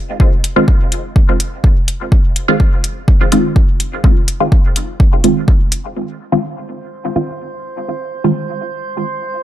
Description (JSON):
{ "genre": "dub techno", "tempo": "125 BPM", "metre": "4/4", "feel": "straight", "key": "F minor", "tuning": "A4 = 441 Hz", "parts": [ { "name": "filtered dub chord stab", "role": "stabs", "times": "0.0-8.3 s", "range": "Eb3 to F4", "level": "-17 LUFS", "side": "right 1 dB", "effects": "phaser, sidechain pumping, dub echo" }, { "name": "electronic kick drum", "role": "drums", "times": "0.2-5.6 s", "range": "none", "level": "-11 LUFS", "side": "equal", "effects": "overdrive" }, { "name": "electronic hi-hat", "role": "drums", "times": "0.4-5.8 s", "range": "none", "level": "-18 LUFS", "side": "left 2 dB", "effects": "overdrive" }, { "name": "drifting glass-harmonics texture", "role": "texture", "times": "6.6-9.4 s", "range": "C5", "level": "-25 LUFS", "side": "right 4 dB", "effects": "chorus, built-in reverb, sidechain pumping" } ], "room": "little or no reverb", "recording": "dark, warm production", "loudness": "-12 LUFS", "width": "side -12 dB against mid", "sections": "0.0-6.0 A section; 6.0-9.4 B section", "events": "filter sweep on synth stab 0.0-6.0", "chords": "0.0 Fm7" }